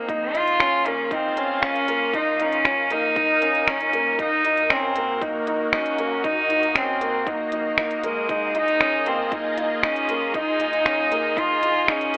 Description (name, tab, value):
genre	piano and strings electronica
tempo	117 BPM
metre	4/4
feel	straight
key	Eb dorian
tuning	A4 = 438 Hz
part	rich cello	melody	0.0-12.2 s	Ab3 to F4	-22 LUFS	equal	none
part	lush unison pad	sustained chords	0.0-12.2 s	Bb3 to F5	-29 LUFS	equal	chorus, phaser
part	felt-muted upright piano	riff	0.0-12.2 s	Bb3 to Eb4	-25 LUFS	equal	none
part	warm sub bass	bass	0.1-12.2 s	F1 to Eb2	-51 LUFS	equal	tube saturation, sidechain pumping
part	electronic kick drum	drums	0.1-12.0 s	none	-34 LUFS	equal	none
part	organic electronic drum kit	drums	0.1-12.2 s	finger snaps, hi-hat	-23 LUFS	equal	none
part	swell	sound effects	3.6-4.2 s	none	-35 LUFS	equal	none
room	moderate echo chamber reverb, RT60 1.4 s, digital ambience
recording	telephone sound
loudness	-19 LUFS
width	side -37 dB against mid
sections	0.0-12.2 A section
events	none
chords	0.1 Bbm; 4.2 Ebm; 8.3 Dbadd9